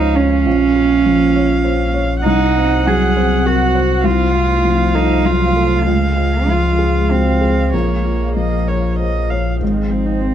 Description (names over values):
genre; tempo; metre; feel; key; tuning
neoclassical piano and strings; 99 BPM; 3/4; rubato; Bb minor; A4 = 440 Hz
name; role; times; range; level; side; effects
warm cello; second line; 0.0-10.3 s; Ab3 to Ab4; -17 LUFS; right 4 dB; none
felt-muted upright piano; accompaniment; 0.0-10.3 s; Bb1 to Db5; -19 LUFS; left 2 dB; none
warm viola; accompaniment; 0.0-10.3 s; Eb3 to Gb5; -22 LUFS; right 2 dB; none
soft additive organ-like pad; sustained chords; 0.2-10.3 s; F3 to F5; -25 LUFS; left 2 dB; ensemble chorus, built-in reverb
warm sub bass; bass; 0.0-10.3 s; Ab1 to Db2; -18 LUFS; left 1 dB; none
room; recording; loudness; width
light reverb; dark, warm production; -13 LUFS; side -10 dB against mid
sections
0.0-9.6 A section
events
none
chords
0.5 Bbm; 2.2 Cdim; 4.1 F/C; 5.9 Db; 7.7 Bbm; 9.6 Ab